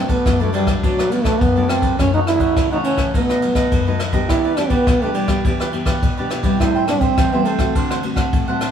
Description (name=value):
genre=samba and choro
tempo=104 BPM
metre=4/4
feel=straight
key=unclear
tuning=A4 = 440 Hz
part: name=growling trombone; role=melody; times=0.0-7.8 s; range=F#3 to E4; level=-18 LUFS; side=right 2 dB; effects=none
part: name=nylon-string guitar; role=accompaniment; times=0.0-8.7 s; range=F#2 to G4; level=-22 LUFS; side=left 3 dB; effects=none
part: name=cavaquinho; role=accompaniment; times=0.1-8.7 s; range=D4 to G5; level=-25 LUFS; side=right 4 dB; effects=none
part: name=jazz brush drum kit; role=drums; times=0.1-8.7 s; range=kick drum, ride cymbal, rim click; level=-20 LUFS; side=equal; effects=none
room=wet studio reverb, RT60 0.8 s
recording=heard from further back in the room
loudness=-15 LUFS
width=side -8 dB against mid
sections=0.0-8.7 A section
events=none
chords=0.0 Bm7; 2.0 F#m7; 3.1 B7; 4.3 Em7; 6.6 Am7; 7.8 D7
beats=0.26 0.84 1.41 | 1.99 2.57 3.14 3.72 | 4.29 4.87 5.45 6.03 | 6.60 7.18 7.76 8.33